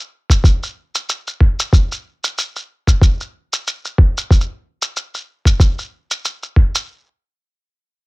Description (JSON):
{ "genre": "folktronica", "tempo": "93 BPM", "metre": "4/4", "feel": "swing 56% on 16ths", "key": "none", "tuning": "none", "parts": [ { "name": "electronic kick drum", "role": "drums", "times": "0.3-6.7 s", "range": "none", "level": "-11 LUFS", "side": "equal", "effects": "none" }, { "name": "shaker", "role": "drums", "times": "0.3-6.9 s", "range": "none", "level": "-21 LUFS", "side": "equal", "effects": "none" } ], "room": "little or no reverb", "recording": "none", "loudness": "-15 LUFS", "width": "side -25 dB against mid", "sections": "0.0-6.9 A section; 6.9-8.1 B section", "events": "none", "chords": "none", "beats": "0.44 1.08 | 1.73 2.37 3.02 3.66 | 4.31 4.95 5.60 6.24" }